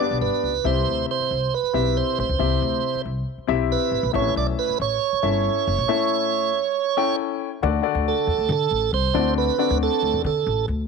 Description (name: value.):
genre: uptempo 1960s-style soul.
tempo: 138 BPM.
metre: 4/4.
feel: straight.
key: D mixolydian.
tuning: A4 = 440 Hz.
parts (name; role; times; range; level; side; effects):
tonewheel organ; melody; 0.0-10.7 s; A4 to D5; -23 LUFS; right 12 dB; overdrive, slow rotary speaker.
warm grand piano; accompaniment; 0.0-10.3 s; A2 to G5; -24 LUFS; left 14 dB; none.
upright bass; bass; 0.1-10.8 s; F#1 to D3; -25 LUFS; left 1 dB; none.
room: light reverb, small room ambience.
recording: 1960s-style stereo with parts hard left and right.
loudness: -20 LUFS.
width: side -5 dB against mid.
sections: 0.6-7.6 A section; 7.6-10.9 B section.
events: none.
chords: 0.0 G; 0.6 C; 4.1 A; 7.6 D.